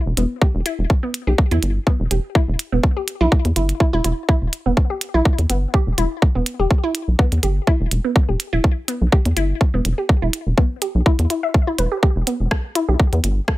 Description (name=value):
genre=minimal techno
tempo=124 BPM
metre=4/4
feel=swing 54% on 16ths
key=E minor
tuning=A4 = 439 Hz
part: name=rubbery square bass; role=bass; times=0.1-13.4 s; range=E1 to E2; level=-18 LUFS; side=equal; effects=sidechain pumping
part: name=hollow square pluck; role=riff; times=0.2-13.2 s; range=B3 to E5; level=-24 LUFS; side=equal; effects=chorus, vintage 12-bit sampler grit, sidechain pumping, ping-pong delay
part: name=minimal click drum kit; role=drums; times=0.2-13.6 s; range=hi-hat, rim click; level=-24 LUFS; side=right 1 dB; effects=overdrive
part: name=electronic kick drum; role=drums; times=0.4-13.6 s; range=none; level=-16 LUFS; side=equal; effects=overdrive
room=little or no reverb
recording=none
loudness=-16 LUFS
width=side -17 dB against mid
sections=0.0-13.6 A section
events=none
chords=0.0 Em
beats=| 0.41 0.90 1.38 1.87 | 2.35 2.83 3.32 3.80 | 4.29 4.77 5.25 5.74 | 6.22 6.71 7.19 7.67 | 8.16 8.64 9.12 9.61 | 10.09 10.58 11.06 11.54 | 12.03 12.51 13.00 13.48